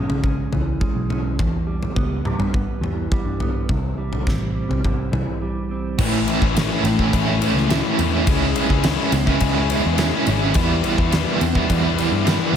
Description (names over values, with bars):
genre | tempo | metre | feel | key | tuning
quiet-loud alternative rock | 105 BPM | 4/4 | straight | A major | A4 = 440 Hz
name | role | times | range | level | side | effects
mellow electric guitar | arpeggios | 0.0-6.0 s | E2 to C#4 | -27 LUFS | right 4 dB | lush chorus
picked electric bass | bass | 0.0-12.6 s | G#1 to C#3 | -23 LUFS | equal | none
huge arena drum kit | drums | 0.1-12.4 s | crash cymbal, kick drum, ride cymbal, snare drum, toms | -22 LUFS | equal | none
biting overdriven guitar | riff | 6.0-12.6 s | A2 to E4 | -22 LUFS | right 11 dB | tremolo
thick fuzz guitar | riff | 6.0-12.6 s | A2 to E4 | -22 LUFS | left 12 dB | distortion
room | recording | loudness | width
light reverb, small room ambience | none | -18 LUFS | side -8 dB against mid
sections
0.0-6.0 A section; 6.0-12.6 B section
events
break 5.4-6.0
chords
0.0 C#m; 1.4 Em; 3.7 C; 6.0 A; 8.3 C#m; 10.6 Em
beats
0.23 0.81 | 1.38 1.96 2.53 3.11 | 3.69 4.26 4.84 5.42 | 5.99 6.56 7.13 7.71 | 8.28 8.85 9.42 9.99 | 10.56 11.13 11.70 12.27